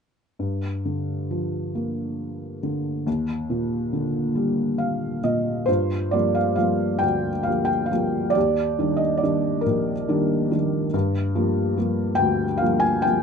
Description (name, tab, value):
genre	classical, lyrical solo piano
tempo	45 BPM (dotted quarters)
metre	6/8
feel	uneven beats, rubato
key	unclear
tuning	A4 = 440 Hz
part	felt-muted upright piano	solo	0.4-13.2 s	Bb1 to Ab5	-21 LUFS	equal	none
room	moderate small room reverb, RT60 0.5 s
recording	dark, warm production, nothing above 10.3 kHz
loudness	-21 LUFS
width	side -6 dB against mid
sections	0.4-5.7 A section; 5.7-13.2 B section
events	felt piano fill 4.4-5.7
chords	0.4 Gm7; 3.1 Ebmaj7; 5.7 Gm7; 8.4 Ebmaj7; 10.9 Gm7